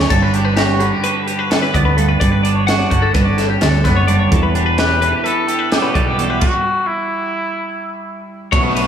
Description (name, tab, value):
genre	math rock and midwest emo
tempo	256 BPM (eighths)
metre	9/8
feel	straight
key	unclear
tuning	A4 = 440 Hz
part	twangy electric guitar	accompaniment	0.0-8.9 s	E2 to G4	-20 LUFS	right 4 dB	analog chorus, slapback echo
part	twelve-string electric guitar	arpeggios	0.0-8.9 s	G4 to F#5	-19 LUFS	left 4 dB	slapback echo
part	hollow-body short-scale fingered electric bass	bass	0.0-8.9 s	E1 to D2	-17 LUFS	equal	none
part	crisp fusion drum kit	drums	0.0-8.9 s	crash cymbal, hi-hat, kick drum, ride cymbal, snare drum	-19 LUFS	equal	none
part	clear trumpet	melody	4.8-8.3 s	E4 to B4	-20 LUFS	left 1 dB	slapback echo, tape echo
part	overdriven electric guitar	riff	8.5-8.9 s	B2 to F#4	-20 LUFS	left 1 dB	none
room	wet lush hall reverb, RT60 2.4 s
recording	big arena sound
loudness	-13 LUFS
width	side -8 dB against mid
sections	0.0-8.5 A section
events	stop 6.4-8.5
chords	0.1 Gmaj7; 4.3 Em7; 6.4 N.C.